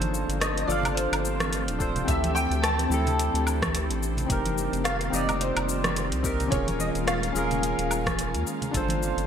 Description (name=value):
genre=sunset chillout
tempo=108 BPM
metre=4/4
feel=swing 57% on 16ths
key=G minor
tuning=A4 = 440 Hz
part: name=soft electric-piano-like synth keys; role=accompaniment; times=0.0-9.3 s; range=C4 to F5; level=-29 LUFS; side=left 1 dB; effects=chorus, auto-pan, digital delay, shimmer reverb
part: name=ethereal airy pad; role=sustained chords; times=0.0-9.3 s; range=D3 to G4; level=-33 LUFS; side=equal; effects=ensemble chorus, built-in reverb, shimmer reverb
part: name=round analog bass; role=bass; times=0.0-9.3 s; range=D1 to Eb2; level=-30 LUFS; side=equal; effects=none
part: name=smooth R&B drum kit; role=drums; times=0.0-9.3 s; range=hi-hat, rim click, shaker, woodblock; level=-30 LUFS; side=equal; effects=gated reverb
part: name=congas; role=percussion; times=0.0-9.0 s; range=none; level=-36 LUFS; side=right 2 dB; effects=none
part: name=warm grand piano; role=melody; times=0.4-8.1 s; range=C5 to A5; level=-32 LUFS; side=left 1 dB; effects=ensemble chorus, ping-pong delay, shimmer reverb
part: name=electronic kick drum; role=drums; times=1.8-8.9 s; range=none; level=-31 LUFS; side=equal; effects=overdrive
room=moderate plate reverb, RT60 2.0 s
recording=bright 1980s-style digital production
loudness=-23 LUFS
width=side -8 dB against mid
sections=0.0-9.3 A section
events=none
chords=0.0 G9sus4; 2.1 D9sus4; 4.3 F9sus4; 6.5 Eb9sus4; 8.7 G9sus4